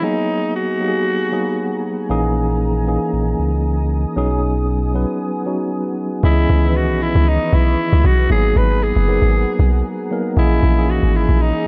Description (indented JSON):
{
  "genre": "amapiano",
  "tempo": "116 BPM",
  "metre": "4/4",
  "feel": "swing 55% on 16ths",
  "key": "unclear",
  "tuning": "A4 = 444 Hz",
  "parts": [
    { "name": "growling alto saxophone", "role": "melody", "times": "0.0-1.8, 6.2-11.7 s", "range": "D#4 to B4", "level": "-23 LUFS", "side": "equal", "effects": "digital delay" },
    { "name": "mellow tine electric piano", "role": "accompaniment", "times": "0.0-11.7 s", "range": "D#3 to D#5", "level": "-23 LUFS", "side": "equal", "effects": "none" },
    { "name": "deep dark ambient pad", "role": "sustained chords", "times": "0.0-11.7 s", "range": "G#4 to D#6", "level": "-34 LUFS", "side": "equal", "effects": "chorus, built-in reverb" },
    { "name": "sub bass with octave", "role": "bass", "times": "2.1-5.1 s", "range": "A#1 to C#2", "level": "-21 LUFS", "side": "equal", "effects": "none" },
    { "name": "deep log drum bass", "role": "bass", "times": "6.2-11.5 s", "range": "F#1 to C#2", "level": "-17 LUFS", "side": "equal", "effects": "none" }
  ],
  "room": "little or no reverb",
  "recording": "dark, warm production",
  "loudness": "-17 LUFS",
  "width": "mono",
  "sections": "0.0-6.2 A section; 6.2-11.7 B section",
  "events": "break 5.2-6.2",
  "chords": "0.0 G#m9; 2.1 C#m69/A#; 4.2 B6; 6.2 C#m9; 8.3 G#m9; 10.4 F#13"
}